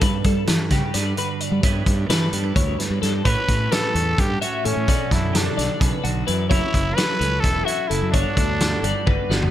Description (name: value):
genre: math rock and midwest emo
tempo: 258 BPM (eighths)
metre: 7/8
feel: straight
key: G lydian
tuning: A4 = 440 Hz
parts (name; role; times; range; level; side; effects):
- twelve-string electric guitar; accompaniment; 0.0-9.5 s; G2 to B4; -28 LUFS; right 8 dB; none
- twelve-string electric guitar; arpeggios; 0.0-9.5 s; F#4 to E5; -27 LUFS; left 7 dB; analog chorus, analog delay
- fuzz fingered electric bass; bass; 0.0-9.5 s; E1 to G3; -24 LUFS; equal; overdrive
- loose indie drum kit; drums; 0.0-9.5 s; hi-hat, kick drum, snare drum, toms; -22 LUFS; equal; none
- growling trumpet; melody; 3.2-9.5 s; C#4 to B4; -25 LUFS; equal; none
room: light reverb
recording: none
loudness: -18 LUFS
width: side -12 dB against mid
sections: 0.0-3.3 A section; 3.3-9.5 B section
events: drum fill 9.1-9.5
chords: 0.0 Gmaj7; 1.6 G6; 3.3 A13; 4.9 Bm9; 6.5 F#m7; 8.1 Gmaj9#11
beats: | 0.02 0.25 0.48 0.71 0.94 1.17 1.40 | 1.63 1.86 2.10 2.33 2.56 2.79 3.02 | 3.25 3.48 3.72 3.95 4.18 4.41 4.64 | 4.88 5.11 5.34 5.58 5.81 6.04 6.27 | 6.51 6.74 6.97 7.21 7.44 7.67 7.91 | 8.14 8.37 8.61 8.84 9.07 9.31